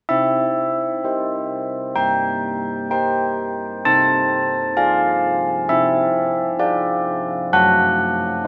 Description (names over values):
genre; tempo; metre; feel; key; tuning
classical, tune for church bells; 65 BPM; 4/4; straight; C major; A4 = 442 Hz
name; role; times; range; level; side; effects
carillon bells; solo; 0.1-8.5 s; F#3 to A5; -19 LUFS; equal; none
room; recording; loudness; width
wet cathedral reverb, RT60 6.2 s; none; -19 LUFS; mono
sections
0.1-8.5 A section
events
none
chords
0.1 C; 3.8 Dm/C; 7.5 F#m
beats
| 0.10 1.04 1.98 2.92 | 3.85 4.77 5.68 6.59 | 7.51 8.43